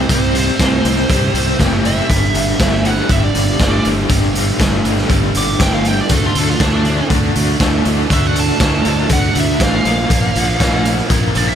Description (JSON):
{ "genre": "classic rock", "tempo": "120 BPM", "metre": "4/4", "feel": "straight", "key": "unclear", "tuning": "A4 = 440 Hz", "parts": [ { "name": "smooth overdriven lead guitar", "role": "melody", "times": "0.0-11.6 s", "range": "D4 to D6", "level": "-21 LUFS", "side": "right 3 dB", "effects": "wah, slapback echo" }, { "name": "distorted electric guitar", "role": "riff", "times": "0.0-11.6 s", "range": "G2 to D4", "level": "-20 LUFS", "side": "right 15 dB", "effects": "distortion" }, { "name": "raw garage guitar", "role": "riff", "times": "0.0-11.6 s", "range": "G2 to D4", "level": "-22 LUFS", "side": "left 13 dB", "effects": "overdrive, tremolo" }, { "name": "fuzz fingered electric bass", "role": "bass", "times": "0.0-11.6 s", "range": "F#1 to D2", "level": "-19 LUFS", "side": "equal", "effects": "overdrive" }, { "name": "raw garage drum kit", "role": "drums", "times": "0.1-11.5 s", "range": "hi-hat, kick drum, snare drum", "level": "-16 LUFS", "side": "equal", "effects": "none" }, { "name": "phased string machine", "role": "sustained chords", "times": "6.1-11.6 s", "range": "D4 to D5", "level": "-28 LUFS", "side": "right 1 dB", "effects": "none" } ], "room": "small room ambience", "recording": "none", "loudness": "-12 LUFS", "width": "side -9 dB against mid", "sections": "0.0-11.6 A section", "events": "lead electric guitar solo 0.0-11.6", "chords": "0.0 C5; 2.1 G5; 6.1 D; 9.9 Bb" }